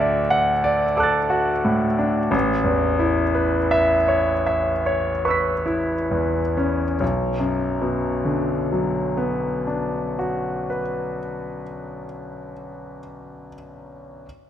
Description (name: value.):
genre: classical, impressionist solo piano.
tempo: 33-48 BPM.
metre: 3/4.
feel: rubato.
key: B minor.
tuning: A4 = 440 Hz.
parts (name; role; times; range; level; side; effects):
clear concert grand piano; solo; 0.0-14.3 s; A1 to B6; -20 LUFS; equal; none.
room: moderate concert hall reverb, RT60 2.0 s.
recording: none.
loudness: -19 LUFS.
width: side -10 dB against mid.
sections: 0.0-7.0 A section; 7.0-12.1 B section.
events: slowing down 0.0-7.0.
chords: 0.0 Dadd9; 2.3 Aadd9; 7.0 Bm.